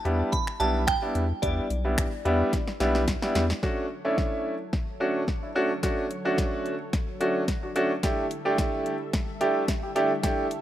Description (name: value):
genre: dance-pop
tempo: 109 BPM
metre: 4/4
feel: straight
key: D major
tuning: A4 = 441 Hz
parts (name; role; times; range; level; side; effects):
- glassy synth bell; melody; 0.0-3.0 s; D5 to B5; -31 LUFS; right 3 dB; chorus, phaser, ping-pong delay
- clear concert grand piano; accompaniment; 0.0-10.4 s; G3 to G4; -26 LUFS; right 1 dB; sidechain pumping
- saturated sub bass; bass; 0.1-3.5 s; B1 to E2; -27 LUFS; equal; sidechain pumping
- deep house drum kit; drums; 0.1-10.6 s; finger snaps, hi-hat, kick drum, snare drum; -28 LUFS; left 1 dB; none
- lush unison pad; sustained chords; 3.6-10.6 s; D3 to E5; -38 LUFS; equal; chorus, phaser, sidechain pumping
room: light reverb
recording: rough home demo mix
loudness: -24 LUFS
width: side -12 dB against mid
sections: 0.0-3.6 A section; 3.6-10.6 B section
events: drum fill 2.5-3.6, 3.6-10.6; build-up 3.6-10.6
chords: 0.0 Em7; 3.6 Dmaj7; 8.0 A7sus4